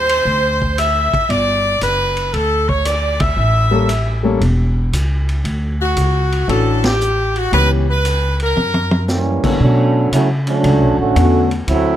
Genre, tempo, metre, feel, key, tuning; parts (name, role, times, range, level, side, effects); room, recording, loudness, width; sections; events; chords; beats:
jazz, big band swing; 116 BPM; 4/4; swing 68% on 8ths; D major; A4 = 439 Hz
bright saxophone section; melody; 0.0-9.1 s; F#4 to E5; -17 LUFS; equal
upright bass; bass; 0.0-12.0 s; E1 to C#3; -17 LUFS; equal
vintage drum kit; drums; 0.1-11.8 s; crash cymbal, hi-hat, kick drum, ride cymbal, snare drum, toms; -24 LUFS; equal
clear concert grand piano; accompaniment; 3.7-11.5 s; D3 to A4; -20 LUFS; left 4 dB
clear trombone section; second line; 9.1-12.0 s; D3 to F#4; -16 LUFS; right 2 dB
light reverb; close, detailed microphones; -13 LUFS; side -11 dB against mid
0.0-9.6 A section; 9.6-12.0 B section
band accent 3.1, 6.7; drum fill 8.6-9.1; trombone section solo 9.6-12.0
0.3 Dsus2; 1.3 Gmaj7; 3.4 A7b9; 5.5 Dmaj9; 7.5 C#m7b5; 8.6 F#7b9; 9.6 Bm9
0.26 0.78 | 1.30 1.82 2.34 2.86 | 3.38 3.89 4.41 4.93 | 5.45 5.97 6.49 7.01 | 7.53 8.05 8.56 9.08 | 9.60 10.12 10.64 11.16 | 11.68